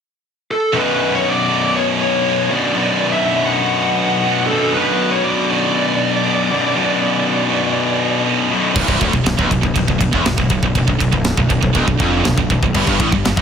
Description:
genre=heavy metal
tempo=120 BPM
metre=4/4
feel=straight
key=B minor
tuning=A4 = 438 Hz
part: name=high-gain lead guitar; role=melody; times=0.5-8.2 s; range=A4 to F#5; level=-19 LUFS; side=equal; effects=distortion
part: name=dark studio string section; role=sustained chords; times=0.7-13.4 s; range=B2 to D4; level=-29 LUFS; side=right 3 dB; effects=none
part: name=heavy high-gain guitar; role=riff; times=0.7-13.4 s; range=B1 to B2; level=-19 LUFS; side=left 6 dB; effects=distortion
part: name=heavy high-gain guitar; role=riff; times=0.7-13.4 s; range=B1 to B2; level=-20 LUFS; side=right 13 dB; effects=distortion
part: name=distorted electric guitar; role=riff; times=8.8-13.4 s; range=B1 to A2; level=-23 LUFS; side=right 3 dB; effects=overdrive
part: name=fuzz fingered electric bass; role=bass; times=8.8-13.4 s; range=B0 to A1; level=-21 LUFS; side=right 1 dB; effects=overdrive
part: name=tight metal drum kit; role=drums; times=8.8-13.4 s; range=crash cymbal, kick drum, ride cymbal, snare drum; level=-19 LUFS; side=right 1 dB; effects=none
room=light reverb, small room ambience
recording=none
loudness=-14 LUFS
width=side -7 dB against mid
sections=0.8-8.8 A section; 8.8-13.4 B section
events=none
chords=0.0 N.C.; 0.8 Bm; 12.8 G5

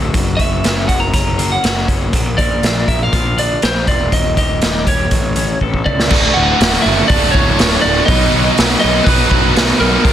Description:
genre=quiet-loud alternative rock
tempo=121 BPM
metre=4/4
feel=straight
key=unclear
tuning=A4 = 440 Hz
part: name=twelve-string electric guitar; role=arpeggios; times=0.0-6.1 s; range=Eb2 to Bb4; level=-23 LUFS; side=left 12 dB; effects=none
part: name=fuzz picked electric bass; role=bass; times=0.0-10.1 s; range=D1 to C#2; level=-19 LUFS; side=equal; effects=overdrive
part: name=raw garage drum kit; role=drums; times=0.1-10.1 s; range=crash cymbal, hi-hat, kick drum, snare drum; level=-15 LUFS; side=equal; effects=none
part: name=lightly driven lead guitar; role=melody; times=0.4-10.1 s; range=Bb4 to A#5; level=-18 LUFS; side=right 2 dB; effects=none
part: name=bright tonewheel organ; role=sustained chords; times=6.1-10.1 s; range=Bb3 to D#6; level=-26 LUFS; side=equal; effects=none
part: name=biting overdriven guitar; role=riff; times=6.1-10.1 s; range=D2 to B4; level=-17 LUFS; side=right 1 dB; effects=none
part: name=distorted electric guitar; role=riff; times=6.1-10.1 s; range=D2 to B4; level=-19 LUFS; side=equal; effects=overdrive
room=little or no reverb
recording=dense, heavily limited modern master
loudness=-11 LUFS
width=side -10 dB against mid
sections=0.0-6.1 A section; 6.1-10.1 B section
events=drum fill 5.6-6.1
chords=0.1 F#; 2.1 Bb; 4.1 Eb; 5.1 A; 6.1 D; 8.1 B

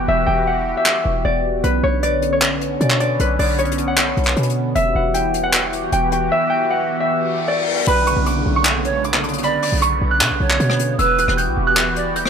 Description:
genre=hip hop, trap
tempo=154 BPM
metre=4/4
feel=half-time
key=B minor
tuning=A4 = 441 Hz
part: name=Celtic harp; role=melody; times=0.0-12.3 s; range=B4 to G6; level=-20 LUFS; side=left 1 dB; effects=low-pass filter, digital delay
part: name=sweeping resonant pad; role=sustained chords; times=0.0-12.3 s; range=C#3 to G4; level=-23 LUFS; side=right 1 dB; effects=chorus
part: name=short 808-style bass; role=bass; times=0.0-12.3 s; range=E1 to B2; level=-22 LUFS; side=equal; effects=none
part: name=jazz brush drum kit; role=drums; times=0.9-12.3 s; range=handclaps, hi-hat, rim click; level=-20 LUFS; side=equal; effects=none
part: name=reverse cymbal and downlifter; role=sound effects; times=7.2-11.0 s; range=none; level=-26 LUFS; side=left 2 dB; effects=none
part: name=polished pan flute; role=second line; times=7.9-12.1 s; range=B4 to D5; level=-23 LUFS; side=right 7 dB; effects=digital delay
room=light reverb, small room reverb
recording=none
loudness=-15 LUFS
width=side -7 dB against mid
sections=0.0-7.9 A section; 7.9-12.3 B section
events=break 0.0-1.6; reverse cymbal 7.2-7.9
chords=0.0 Emadd9; 1.6 Bmadd9; 4.8 Emadd9; 7.9 Bmadd9; 11.0 Emadd9

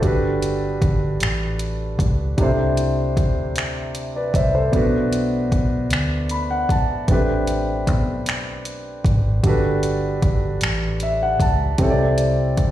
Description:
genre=slow six-eight R&B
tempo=51 BPM (dotted quarters)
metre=6/8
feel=straight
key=unclear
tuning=A4 = 440 Hz
part: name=warm grand piano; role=accompaniment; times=0.0-12.7 s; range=C3 to B5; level=-22 LUFS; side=equal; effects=slapback echo
part: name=vintage muted fingered electric bass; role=bass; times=0.0-12.7 s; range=G1 to D2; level=-23 LUFS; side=equal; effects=none
part: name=smooth R&B drum kit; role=drums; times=0.0-12.7 s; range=finger snaps, hi-hat, kick drum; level=-21 LUFS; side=equal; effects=overdrive
room=light reverb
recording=live gig heard through the venue's PA, recital hall reverb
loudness=-18 LUFS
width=side -13 dB against mid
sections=0.0-12.7 A section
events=grand piano fill 5.9-7.1, 10.6-11.8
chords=0.0 Gmaj9; 2.4 C69; 4.7 Bm7; 7.1 Am11; 9.4 Gmaj9; 11.8 C69

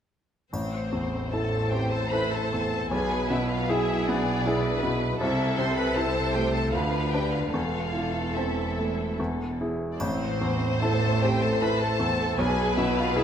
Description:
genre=classical, romantic movement for piano and orchestra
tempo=72-81 BPM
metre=3/4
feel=rubato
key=A minor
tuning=A4 = 440 Hz
part: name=clear baby grand piano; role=melody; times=0.5-13.2 s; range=A1 to B4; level=-28 LUFS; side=equal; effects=none
part: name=rich studio violin section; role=melody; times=0.5-13.2 s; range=C5 to C6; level=-33 LUFS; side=left 1 dB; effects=none
part: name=rich studio viola section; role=accompaniment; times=0.5-13.2 s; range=C4 to C5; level=-34 LUFS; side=equal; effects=none
part: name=rich studio cello section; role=bass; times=0.5-13.2 s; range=E2 to D3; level=-33 LUFS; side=right 3 dB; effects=none
part: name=rich studio double bass section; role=bass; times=0.5-13.2 s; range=E1 to D2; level=-32 LUFS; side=right 2 dB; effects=none
part: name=triangle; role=percussion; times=0.5-2.1, 10.0-11.6 s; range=none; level=-46 LUFS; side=left 1 dB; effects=none
part: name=rich studio violin section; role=second line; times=1.3-13.2 s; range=G#4 to C5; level=-31 LUFS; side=left 3 dB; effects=none
room=moderate recital hall reverb, RT60 1.3 s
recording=none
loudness=-24 LUFS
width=side -8 dB against mid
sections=0.5-13.2 A section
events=none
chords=0.5 Am; 2.9 E7/B; 5.2 Am/C; 6.7 Bdim/D; 7.5 Am/E; 9.2 E; 10.0 Am; 12.4 E/B

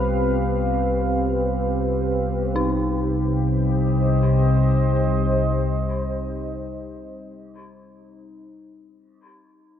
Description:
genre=dark ambient drone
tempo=free time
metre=none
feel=none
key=C harmonic minor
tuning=A4 = 444 Hz
part: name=deep dark ambient pad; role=sustained chords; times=0.0-7.8 s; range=C4 to F5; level=-24 LUFS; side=left 1 dB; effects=chorus, built-in reverb
part: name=dark detuned synth bell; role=arpeggios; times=0.0-9.5 s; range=Eb4 to F4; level=-32 LUFS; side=left 1 dB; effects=chorus, dub echo
part: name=deep rumbling drone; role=drone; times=0.0-7.5 s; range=C2 to C3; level=-22 LUFS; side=equal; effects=built-in reverb
room=wet spring reverb, RT60 2.6 s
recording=echo-heavy mix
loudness=-19 LUFS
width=side -9 dB against mid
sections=0.0-2.6 A section; 2.6-7.0 B section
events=none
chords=0.0 Gsus4/C; 2.6 Cm

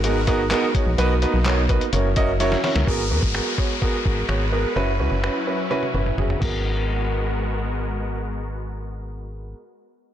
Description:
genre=dance-pop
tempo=127 BPM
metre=4/4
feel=straight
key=G# minor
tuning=A4 = 440 Hz
part: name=warm grand piano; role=accompaniment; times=0.0-9.6 s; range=B3 to D#5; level=-24 LUFS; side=right 3 dB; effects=sidechain pumping, low-pass filter
part: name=supersaw pad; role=sustained chords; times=0.0-9.5 s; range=F#3 to B4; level=-30 LUFS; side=left 1 dB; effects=sidechain pumping, low-pass filter
part: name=organ-like FM bass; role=bass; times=0.0-9.5 s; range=F#1 to D#2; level=-24 LUFS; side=left 1 dB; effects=sidechain pumping
part: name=lo-fi sampler-style drum kit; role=drums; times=0.0-6.5 s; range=crash cymbal, finger snaps, handclaps, hi-hat, kick drum, snare drum, toms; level=-26 LUFS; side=left 1 dB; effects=soft clipping on snare
part: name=downlifter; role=sound effects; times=2.9-6.7 s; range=none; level=-31 LUFS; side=left 2 dB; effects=none
room=light reverb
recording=blown-out, overdriven recording, overdrive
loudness=-19 LUFS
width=side -10 dB against mid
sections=0.0-2.9 A section; 2.9-6.7 B section; 6.7-10.1 C section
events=drop 0.0-2.9; drum fill 2.4-2.9, 5.7-6.7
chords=0.0 G#m9; 1.0 Bmaj7; 1.9 F#7; 2.9 G#m9; 4.8 F#7sus4; 6.4 G#m9

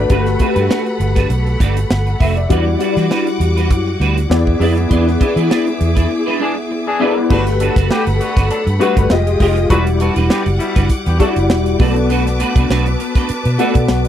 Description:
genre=polished 1980s jazz-funk pop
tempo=100 BPM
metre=4/4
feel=swing 54% on 16ths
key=unclear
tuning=A4 = 440 Hz
part: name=warm concert grand piano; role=accompaniment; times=0.0-14.1 s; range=G3 to F#5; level=-17 LUFS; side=left 3 dB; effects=ensemble chorus
part: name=clear studio string section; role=sustained chords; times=0.0-14.1 s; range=G3 to Eb6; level=-25 LUFS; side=equal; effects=none
part: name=vintage muted fingered electric bass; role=bass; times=0.0-14.1 s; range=E1 to E3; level=-16 LUFS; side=equal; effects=none
part: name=clean electric guitar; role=riff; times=0.1-14.1 s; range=G3 to D5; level=-22 LUFS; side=right 6 dB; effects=ensemble chorus
part: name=tight funk drum kit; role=drums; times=0.1-14.1 s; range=crash cymbal, hi-hat, kick drum, snare drum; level=-16 LUFS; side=right 1 dB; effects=none
part: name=clear horn section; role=second line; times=6.4-11.3 s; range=B2 to B4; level=-21 LUFS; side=left 3 dB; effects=none
room=light reverb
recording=dry, close 1970s-style studio recording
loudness=-13 LUFS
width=side -10 dB against mid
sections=0.0-7.3 A section; 7.3-14.1 B section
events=band accent 4.9-7.3; break 6.1-7.3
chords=0.1 Gmaj9; 2.5 Em9; 4.3 E7; 7.3 Gmaj9; 9.1 Fm9; 9.7 Em9; 11.8 Bm7

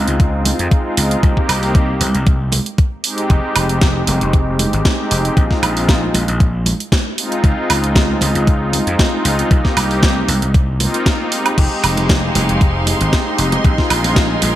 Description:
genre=nu-disco, nu disco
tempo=116 BPM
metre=4/4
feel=swing 53% on 16ths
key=F minor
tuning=A4 = 440 Hz
part: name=warm analog pad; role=accompaniment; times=0.0-14.3 s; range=Ab3 to G4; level=-19 LUFS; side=equal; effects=chorus, ping-pong delay
part: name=gritty slap bass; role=bass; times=0.0-14.5 s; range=F1 to F2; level=-18 LUFS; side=equal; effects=overdrive, sidechain pumping
part: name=house drum kit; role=drums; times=0.1-14.5 s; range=crash cymbal, hi-hat, snare drum, woodblock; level=-19 LUFS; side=right 2 dB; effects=gated reverb
part: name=electronic kick drum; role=drums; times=0.2-14.3 s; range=none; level=-13 LUFS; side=equal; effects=overdrive
part: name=congas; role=percussion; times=0.5-14.5 s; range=none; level=-25 LUFS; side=right 2 dB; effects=none
part: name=rich studio violin section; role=sustained chords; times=11.6-14.6 s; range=Ab3 to C6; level=-22 LUFS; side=right 1 dB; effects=sidechain pumping
room=light reverb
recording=bright 1980s-style digital production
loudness=-13 LUFS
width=side -13 dB against mid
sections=0.0-14.6 A section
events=none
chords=0.0 Dbmaj9; 1.2 Abmaj7/C; 3.3 Fm7; 5.4 Bb9sus4; 7.2 Dbmaj9; 9.5 Abmaj7/C; 11.6 Fm7; 13.6 Bb9sus4

